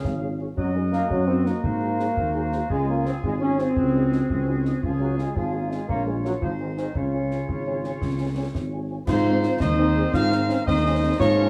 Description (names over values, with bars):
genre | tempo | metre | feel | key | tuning
military-style march for wind band | 113 BPM (dotted quarters) | 6/8 | straight | Db major | A4 = 436 Hz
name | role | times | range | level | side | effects
clear woodwind section | second line | 0.0-11.5 s | Eb4 to F5 | -37 LUFS | equal | none
clear trombone section | sustained chords | 0.0-11.5 s | Db3 to Db4 | -30 LUFS | equal | none
mellow tuba | bass | 0.0-11.5 s | Ab1 to Ab2 | -27 LUFS | equal | none
concert snare drum, concert bass drum and clash cymbals | drums | 0.0-11.4 s | none | -34 LUFS | equal | none
mellow cornet | melody | 0.2-11.5 s | C5 to Ab5 | -31 LUFS | equal | none
mellow French horn section | accompaniment | 0.2-11.4 s | Ab3 to Db5 | -35 LUFS | equal | none
bright piccolo | second line | 9.1-11.5 s | C6 to F6 | -35 LUFS | equal | none
warm euphonium | second line | 9.1-11.5 s | C4 to Ab4 | -31 LUFS | equal | none
room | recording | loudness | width
light reverb | none | -24 LUFS | mono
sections
0.0-9.1 A section; 9.1-11.5 B section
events
none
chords
0.0 Db; 0.6 Ebm/Gb; 1.6 Ab7; 2.7 Db; 3.8 Ab7/Db; 4.8 Db; 5.9 Bbm; 6.4 Ab; 7.0 Db; 9.1 Ab